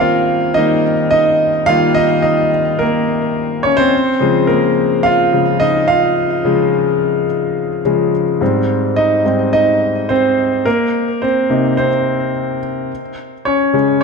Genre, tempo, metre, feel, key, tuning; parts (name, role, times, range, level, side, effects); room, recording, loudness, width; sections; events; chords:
pop; 107 BPM; 4/4; straight; A4 = 440 Hz
clear grand piano; solo; 0.0-14.0 s; Ab2 to F5; -12 LUFS; equal; ping-pong delay
moderate large studio reverb, RT60 1.3 s; -12 LUFS; side -4 dB against mid
0.0-8.4 A section; 8.4-14.0 B section
grand piano solo 0.0-8.4, 8.4-14.0
0.0 Ebadd9; 3.9 Db; 8.4 Abmaj7; 10.7 Cm7; 12.9 Db5